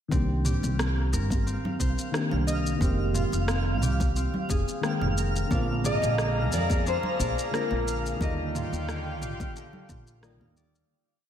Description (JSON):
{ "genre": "sunset chillout", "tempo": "89 BPM", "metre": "4/4", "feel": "swing 53% on 16ths", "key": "Eb major", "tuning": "A4 = 437 Hz", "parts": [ { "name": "mellow FM electric piano", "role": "accompaniment", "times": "0.1-10.9 s", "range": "D3 to G5", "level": "-32 LUFS", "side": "equal", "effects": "chorus, phaser, auto-pan, low-pass filter, tape echo, slapback echo" }, { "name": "Celtic harp", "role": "arpeggios", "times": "0.1-11.3 s", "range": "D3 to F5", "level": "-36 LUFS", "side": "left 1 dB", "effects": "tape echo, slapback echo" }, { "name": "upright bass", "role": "bass", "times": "0.1-10.8 s", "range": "F1 to F2", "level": "-28 LUFS", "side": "equal", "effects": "none" }, { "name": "deep house drum kit", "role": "drums", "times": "0.1-10.9 s", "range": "rim click, shaker, toms", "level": "-34 LUFS", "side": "equal", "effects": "none" }, { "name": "electronic kick drum", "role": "drums", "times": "0.1-10.0 s", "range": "none", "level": "-29 LUFS", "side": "equal", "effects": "none" }, { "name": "congas", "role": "percussion", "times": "0.1-10.5 s", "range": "none", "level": "-38 LUFS", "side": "equal", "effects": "none" }, { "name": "twinkling granular texture", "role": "texture", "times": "0.7-10.9 s", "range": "F5", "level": "-38 LUFS", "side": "right 2 dB", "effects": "built-in reverb" }, { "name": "airy breathy pad", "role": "sustained chords", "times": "5.5-10.9 s", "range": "F4 to Bb5", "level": "-36 LUFS", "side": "right 1 dB", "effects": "chorus" }, { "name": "nylon-string guitar", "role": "melody", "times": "5.9-10.2 s", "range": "Bb4 to Eb5", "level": "-31 LUFS", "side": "left 3 dB", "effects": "ping-pong delay, slapback echo" } ], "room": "moderate lush hall reverb, RT60 1.8 s, studio ambience", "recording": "big arena sound", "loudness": "-24 LUFS", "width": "side -9 dB against mid", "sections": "0.1-10.9 groove", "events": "fade-out 7.3-10.9", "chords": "0.1 Cm7; 2.8 Fm11; 5.5 Bb7; 8.2 Ebmaj9", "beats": "| 0.12 0.79 1.47 2.14 | 2.81 3.49 4.16 4.84 | 5.51 6.19 6.86 7.53 | 8.21 8.88 9.56 10.23" }